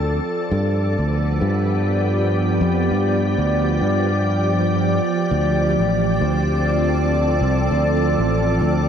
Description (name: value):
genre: ambient dub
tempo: 100 BPM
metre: 4/4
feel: swing 57% on 16ths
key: D dorian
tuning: A4 = 440 Hz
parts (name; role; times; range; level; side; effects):
- soft additive organ-like pad; sustained chords; 0.0-8.9 s; F3 to D5; -19 LUFS; equal; ensemble chorus, built-in reverb, vintage 12-bit sampler grit
- fingered electric bass; bass; 0.0-8.9 s; A1 to G2; -20 LUFS; equal; none
room: wet church reverb, RT60 3.6 s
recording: dreamy mix soaked in reverb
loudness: -17 LUFS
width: side -8 dB against mid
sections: 0.0-8.9 A section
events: none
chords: 0.0 Dm7; 0.5 G7; 5.3 Dm7